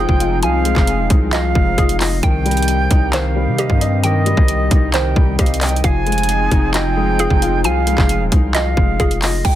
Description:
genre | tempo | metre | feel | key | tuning
hip hop, trap | 133 BPM | 4/4 | half-time | unclear | A4 = 440 Hz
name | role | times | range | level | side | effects
silver concert flute | second line | 0.0-9.4 s | Eb5 to Ab5 | -22 LUFS | right 3 dB | tape echo
warm baby grand piano | accompaniment | 0.0-9.5 s | Eb3 to Eb5 | -22 LUFS | left 5 dB | low-pass filter
warm analog pad | sustained chords | 0.0-9.4 s | C3 to Ab4 | -25 LUFS | equal | chorus
hollow square pluck | arpeggios | 0.0-9.6 s | G4 to Ab5 | -24 LUFS | right 4 dB | chorus, low-pass filter, tape echo
hard-hitting 808-style bass | bass | 0.0-9.6 s | Eb1 to C3 | -19 LUFS | equal | none
trap drum kit | drums | 0.1-9.6 s | crash cymbal, handclaps, hi-hat, kick drum | -16 LUFS | equal | none
room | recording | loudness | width
little or no reverb | dense, heavily limited modern master | -13 LUFS | side -12 dB against mid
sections
0.0-9.4 A section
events
none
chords
0.0 Fm7; 2.2 Cm; 5.8 Fm7

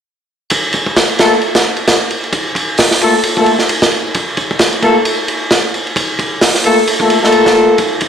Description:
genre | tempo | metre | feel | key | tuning
breakbeat, breaks | 132 BPM | 4/4 | swing 58% on 16ths | unclear | A4 = 440 Hz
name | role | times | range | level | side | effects
crunchy breakbeat drum kit | drums | 0.5-8.1 s | hi-hat, kick drum, ride cymbal, snare drum | -12 LUFS | right 1 dB | high-pass filter on kick, high-pass filter on cymbals, high-pass filter on hats, high-pass filter on snare, high-pass filter on room
warm horn section | stabs | 1.2-7.8 s | A3 to A4 | -12 LUFS | left 1 dB | low-pass filter, dub echo
room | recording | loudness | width
moderate small room reverb, RT60 0.5 s | played on a big sound system in a bare room, stone room reverb | -10 LUFS | side -8 dB against mid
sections
0.5-8.1 A section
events
none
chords
0.5 Bb5

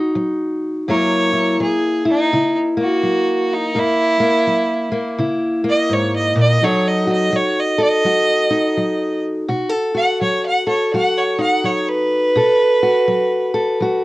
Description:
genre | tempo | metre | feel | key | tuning
acoustic country blues, solo or duo | 84 BPM | 4/4 | swing 62% on 8ths | unclear | A4 = 440 Hz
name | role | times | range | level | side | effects
fingerpicked steel-string acoustic guitar | accompaniment | 0.0-14.0 s | F#2 to A#4 | -18 LUFS | left 1 dB | none
clear fiddle | melody | 0.9-14.0 s | D#4 to F#5 | -17 LUFS | right 1 dB | cassette tape
room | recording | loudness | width
light reverb | home recording on cassette | -15 LUFS | side -18 dB against mid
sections
0.0-14.0 A section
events
fiddle solo 0.0-14.0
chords
0.0 B (rootless); 0.9 F#7; 6.6 B7

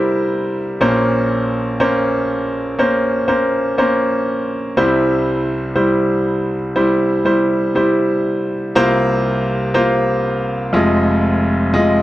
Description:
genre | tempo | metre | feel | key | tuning
folk | 60 BPM | 4/4 | straight | unclear | A4 = 440 Hz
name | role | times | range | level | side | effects
bright concert grand piano | solo | 0.0-12.0 s | F1 to Eb5 | -14 LUFS | equal | none
room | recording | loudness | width
light reverb | none | -14 LUFS | side -15 dB against mid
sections
0.0-8.8 A section; 8.8-12.0 B section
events
none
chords
0.0 C; 0.8 Bbmadd9; 4.8 C; 8.8 C7sus4; 10.7 Fm7

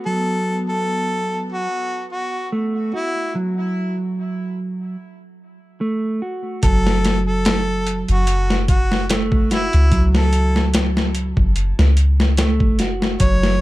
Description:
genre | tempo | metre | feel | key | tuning
trip hop | 73 BPM | 4/4 | swing 54% on 16ths | F# minor | A4 = 439 Hz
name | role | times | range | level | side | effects
warm studio string section | sustained chords | 0.0-3.3 s | B3 | -33 LUFS | left 2 dB | none
mellow electric guitar | arpeggios | 0.0-13.6 s | F#3 to F#4 | -23 LUFS | right 2 dB | vintage 12-bit sampler grit, tape echo
clear harmonica | melody | 0.1-13.6 s | E4 to C#5 | -24 LUFS | equal | vintage 12-bit sampler grit, tape echo
soft 808-style bass | bass | 6.6-13.6 s | F#1 to C#2 | -18 LUFS | equal | none
boom bap sampler-style drum kit | drums | 6.6-13.6 s | hi-hat, kick drum, snare drum | -19 LUFS | equal | overdrive
room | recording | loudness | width
little or no reverb | dark, warm production | -16 LUFS | side -17 dB against mid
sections
0.0-6.6 A section; 6.6-13.6 B section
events
break 3.3-6.6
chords
0.0 N.C.; 6.6 F#m

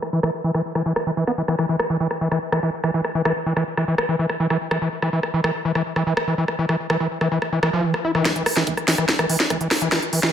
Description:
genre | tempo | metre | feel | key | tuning
psychedelic trance | 144 BPM | 4/4 | straight | unclear | A4 = 441 Hz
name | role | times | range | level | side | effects
techno drum kit | drums | 0.0-10.3 s | hi-hat, rim click, snare drum | -23 LUFS | equal | studio reverb
screaming distorted acid line | riff | 0.1-10.3 s | E3 to E4 | -21 LUFS | equal | distortion, chorus, auto-pan, vintage 12-bit sampler grit, sidechain pumping, ping-pong delay
electronic kick drum | drums | 8.3-10.0 s | none | -29 LUFS | equal | overdrive, high-pass filter on kick, studio reverb
room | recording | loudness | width
moderate digital room reverb, RT60 1.1 s | low-pass filter | -19 LUFS | side -9 dB against mid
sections
0.0-8.3 A section; 8.3-10.3 B section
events
filter sweep 0.0-8.3; build-up 8.3-10.3; drum fill 8.3-10.3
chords
none

